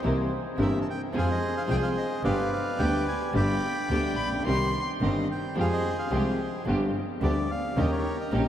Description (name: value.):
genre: tango.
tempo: 108 BPM.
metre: 4/4.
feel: rubato.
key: C harmonic minor.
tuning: A4 = 440 Hz.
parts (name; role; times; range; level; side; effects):
warm concert grand piano; accompaniment; 0.0-8.5 s; G1 to Ab4; -28 LUFS; left 1 dB; none.
warm studio string section; stabs; 0.0-8.5 s; Ab3 to Bb4; -35 LUFS; right 2 dB; none.
dark double bass; bass; 0.0-8.5 s; G1 to F2; -30 LUFS; right 1 dB; none.
bandoneon; melody; 0.6-8.5 s; G4 to B5; -31 LUFS; equal; none.
dark violin; second line; 3.9-4.8 s; G5 to C6; -36 LUFS; left 1 dB; none.
room: wet cathedral reverb, RT60 6.6 s.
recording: in a vast, echoing space.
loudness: -24 LUFS.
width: side -10 dB against mid.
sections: 0.0-8.5 A section.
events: none.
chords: 0.0 C7; 1.1 Fm; 2.2 G; 4.5 Cm; 5.6 Fmadd9; 6.7 G; 7.8 Eb7.